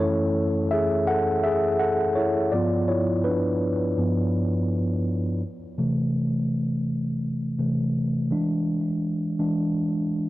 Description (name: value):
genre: hip hop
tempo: 83 BPM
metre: 4/4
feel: swing 66% on 16ths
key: unclear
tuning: A4 = 440 Hz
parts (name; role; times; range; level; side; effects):
- mellow tine electric piano; solo; 0.0-10.3 s; F#2 to F#5; -22 LUFS; equal; medium stereo tremolo, analog delay
room: light reverb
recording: dry, gritty hardware recording, cassette tape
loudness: -22 LUFS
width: side -16 dB against mid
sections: 0.0-10.3 A section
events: tine electric piano solo 0.0-10.3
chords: 0.0 F#m9; 2.5 G7; 5.4 C6; 8.3 E7